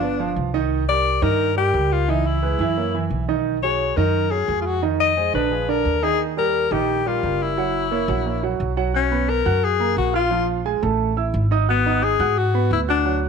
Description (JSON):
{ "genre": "jazz", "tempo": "175 BPM", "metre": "4/4", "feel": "straight", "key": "B major from 8.9 s", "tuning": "A4 = 441 Hz", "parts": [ { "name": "clear alto saxophone", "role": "melody", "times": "0.0-13.2 s", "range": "B3 to Eb5", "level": "-21 LUFS", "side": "left 9 dB", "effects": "none" }, { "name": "warm grand piano", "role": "accompaniment", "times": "0.0-13.3 s", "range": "D3 to F#6", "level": "-23 LUFS", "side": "right 12 dB", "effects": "none" }, { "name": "upright bass", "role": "bass", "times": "0.0-13.3 s", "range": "Gb1 to G#2", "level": "-24 LUFS", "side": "equal", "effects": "none" } ], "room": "moderate echo chamber reverb, RT60 1.3 s", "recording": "1960s-style stereo with parts hard left and right", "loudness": "-18 LUFS", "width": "side -6 dB against mid", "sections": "0.0-8.9 A section; 8.9-13.3 B section", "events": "none", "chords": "0.0 G7; 0.7 Cm9; 2.1 Dbm7; 2.8 Gb6; 3.5 B69; 4.8 Fm7; 5.5 Bb7; 6.2 Ebadd9; 7.6 Gb7; 8.9 Bsus2; 10.3 A#5; 11.0 A5; 11.7 G#m7" }